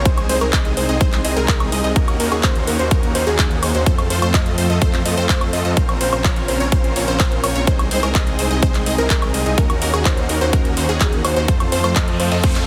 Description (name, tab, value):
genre	EDM, festival progressive house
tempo	126 BPM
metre	4/4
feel	straight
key	unclear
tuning	A4 = 441 Hz
part	lush unison pad	sustained chords	0.0-12.7 s	C3 to Ab4	-30 LUFS	equal	none
part	unison pluck	arpeggios	0.0-12.6 s	Ab4 to Eb5	-26 LUFS	equal	sidechain pumping, digital delay
part	supersaw chords	riff	0.0-12.6 s	Ab3 to Eb5	-25 LUFS	equal	sidechain pumping, digital delay
part	detuned saw bass	bass	0.0-12.7 s	Bb1 to F2	-25 LUFS	equal	chorus, tube saturation, sidechain pumping
part	impact and noise sweep	sound effects	0.0-0.1, 12.1-12.7 s	none	-32 LUFS	equal	none
part	big-room dance drum kit	drums	0.1-12.7 s	handclaps, hi-hat, woodblock	-25 LUFS	equal	none
part	electronic kick drum	drums	0.1-12.5 s	none	-19 LUFS	equal	overdrive
room	light reverb, digital ambience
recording	heavily compressed radio sound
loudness	-17 LUFS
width	mono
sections	0.0-12.7 A section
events	noise sweep 12.1-12.7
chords	0.1 Ab/C; 2.0 Ebm7; 3.9 F; 5.8 Bbmadd9; 7.7 Ab/C; 9.6 Ebm7; 11.5 F